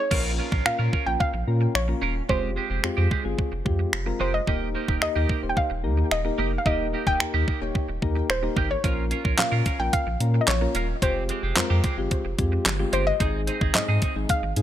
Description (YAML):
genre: dance-pop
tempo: 110 BPM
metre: 4/4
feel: straight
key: Bb dorian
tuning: A4 = 440 Hz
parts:
  - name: soft round pluck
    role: melody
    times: 0.0-14.6 s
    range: C5 to G5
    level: -28 LUFS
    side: equal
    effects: chorus, digital delay
  - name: soft electric-piano-like synth keys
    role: accompaniment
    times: 0.1-14.6 s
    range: Ab3 to Db5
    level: -31 LUFS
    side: left 4 dB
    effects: chorus, sidechain pumping
  - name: twelve-string electric guitar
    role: riff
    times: 0.1-14.5 s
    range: Ab3 to Bb4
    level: -30 LUFS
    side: right 7 dB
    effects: wide subtle chorus
  - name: warm sub bass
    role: bass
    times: 0.1-14.6 s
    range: Eb1 to Bb2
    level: -26 LUFS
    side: equal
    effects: sidechain pumping
  - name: clean 12-bit digital drum machine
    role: drums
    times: 0.1-14.6 s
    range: crash cymbal, finger snaps, handclaps, hi-hat, kick drum, snare drum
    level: -26 LUFS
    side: equal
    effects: none
room: light reverb, digital ambience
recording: bright 1980s-style digital production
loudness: -22 LUFS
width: side -11 dB against mid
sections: 0.1-14.6 A section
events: none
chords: 0.1 Bbm; 2.3 Fmadd9; 4.5 Eb; 8.8 Bbm; 11.0 Fmadd9; 13.2 Ab